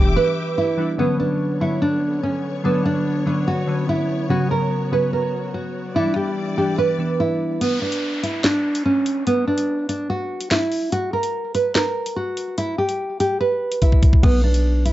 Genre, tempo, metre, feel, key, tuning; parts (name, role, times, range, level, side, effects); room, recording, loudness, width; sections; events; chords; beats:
hip hop, drill; 145 BPM; 4/4; half-time; B harmonic minor; A4 = 439 Hz
nylon-string guitar; melody; 0.0-14.9 s; B3 to B4; -21 LUFS; right 1 dB; low-pass filter
glassy digital keys; accompaniment; 0.0-7.6 s; C#3 to C#5; -23 LUFS; left 1 dB; chorus, low-pass filter
warm symphonic string section; sustained chords; 0.0-7.6 s; D3 to D6; -32 LUFS; left 1 dB
hard-hitting 808-style bass; bass; 0.0-0.2, 14.2-14.9 s; E1 to B1; -18 LUFS; equal
drill drum kit; drums; 7.6-14.9 s; crash cymbal, handclaps, hi-hat, kick drum, snare drum; -18 LUFS; equal
downlifter; sound effects; 7.6-10.9 s; -32 LUFS; equal
little or no reverb; dry, gritty hardware recording, nothing above 7.8 kHz; -18 LUFS; side -14 dB against mid
1.0-7.6 A section; 7.6-14.9 B section
break 0.2-1.0; kick muted 7.6-14.2; drum fill 13.8-14.2
0.0 Em7; 1.0 Bmadd9; 4.3 F#sus4; 6.0 Em7; 7.6 N.C.; 14.2 Bm
0.16 0.58 | 0.99 1.41 1.82 2.23 | 2.65 3.06 3.48 3.89 | 4.30 4.72 5.13 5.54 | 5.96 6.37 6.79 7.20 | 7.61 8.03 8.44 8.85 | 9.27 9.68 10.10 10.51 | 10.92 11.34 11.75 12.16 | 12.58 12.99 13.41 13.82 | 14.23 14.65